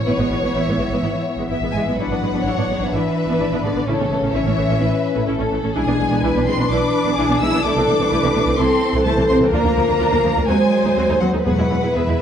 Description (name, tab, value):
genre	classical, dramatic, fast romantic movement for symphony orchestra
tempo	127 BPM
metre	4/4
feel	straight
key	A major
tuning	A4 = 440 Hz
part	warm symphonic violin section	melody	0.0-12.2 s	B4 to E6	-25 LUFS	left 3 dB	none
part	warm symphonic violin section	second line	0.0-12.2 s	G#4 to E5	-24 LUFS	left 2 dB	none
part	mellow French horn section	sustained chords	0.0-12.2 s	E3 to B#4	-22 LUFS	left 3 dB	none
part	rich symphonic cello section	bass	0.0-12.2 s	B2 to E4	-23 LUFS	right 3 dB	none
part	rich chamber viola section	accompaniment	0.1-12.2 s	C3 to G#4	-25 LUFS	right 2 dB	none
part	rich symphonic double bass section	bass	0.1-12.1 s	G#1 to E2	-24 LUFS	right 3 dB	none
part	timpani	percussion	11.5-12.2 s	E2	-25 LUFS	left 1 dB	none
room	moderate scoring stage reverb, RT60 1.4 s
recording	none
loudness	-16 LUFS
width	side -8 dB against mid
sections	0.0-12.2 A section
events	none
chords	0.1 E/G#; 2.0 E7/G#; 3.9 A; 5.8 E7/B; 7.6 Am/C; 9.5 Bb/D; 10.5 D#dim7; 11.5 E